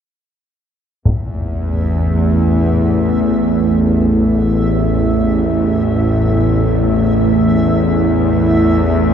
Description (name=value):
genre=dark ambient drone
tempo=free time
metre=none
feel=none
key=unclear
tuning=A4 = 440 Hz
part: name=bowed-like drone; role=drone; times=1.2-9.1 s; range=A1 to E2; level=-14 LUFS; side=equal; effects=built-in reverb
part: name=deep dark ambient pad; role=sustained chords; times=1.5-9.1 s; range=A3 to E5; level=-16 LUFS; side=equal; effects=chorus, built-in reverb
part: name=taiko ensemble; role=percussion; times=1.1-1.3 s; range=none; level=-21 LUFS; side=left 1 dB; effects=none
part: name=backwards swelling texture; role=texture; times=1.8-9.1 s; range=E5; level=-28 LUFS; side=left 1 dB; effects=built-in reverb, shimmer reverb
room=wet cathedral reverb, RT60 6.2 s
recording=in a vast, echoing space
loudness=-12 LUFS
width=side -8 dB against mid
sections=1.0-9.1 A section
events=none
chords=1.0 A5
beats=free time